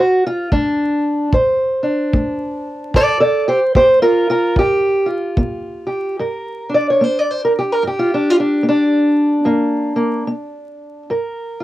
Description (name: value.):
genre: acoustic country blues, solo or duo.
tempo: 74 BPM.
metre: 4/4.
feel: swing 60% on 8ths.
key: G minor.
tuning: A4 = 440 Hz.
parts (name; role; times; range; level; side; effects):
fingerpicked steel-string acoustic guitar; melody; 0.0-11.6 s; G2 to D5; -14 LUFS; equal; cassette tape.
kick drum; drums; 0.5-5.6 s; none; -18 LUFS; equal; cassette tape.
room: light reverb.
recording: home recording on cassette, vinyl crackle.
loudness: -14 LUFS.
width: side -15 dB against mid.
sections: 0.0-6.2 A section; 6.2-11.6 B section.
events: steel-string acoustic guitar solo 0.0-6.2.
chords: 0.0 D5; 2.9 Gm7; 6.2 Gm.